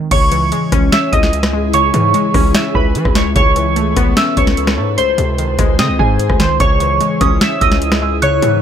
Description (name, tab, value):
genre	hip hop, trap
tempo	148 BPM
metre	4/4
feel	half-time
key	C# minor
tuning	A4 = 441 Hz
part	glassy wavetable pluck	accompaniment	0.0-8.6 s	C#2 to C#5	-19 LUFS	left 2 dB	chorus, low-pass filter
part	glassy digital keys	melody	0.1-8.6 s	G#4 to E6	-16 LUFS	right 1 dB	chorus, phaser, low-pass filter, digital delay
part	ethereal airy pad	sustained chords	0.6-8.6 s	E4 to B#4	-23 LUFS	equal	ensemble chorus, built-in reverb
part	distorted 808-style bass	bass	0.1-8.6 s	C#2 to E3	-18 LUFS	equal	distortion
part	booming analog drum machine	drums	0.1-8.5 s	crash cymbal, hi-hat, kick drum, rim click, snare drum	-15 LUFS	equal	overdrive
part	soft synth bell	second line	6.6-8.6 s	C#6 to F#6	-20 LUFS	right 7 dB	chorus, digital delay
room	digital ambience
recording	none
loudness	-11 LUFS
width	side -8 dB against mid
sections	0.1-8.6 A section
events	none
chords	0.1 C#m; 3.4 Aadd9/C#; 5.0 G#/C#; 6.6 C#m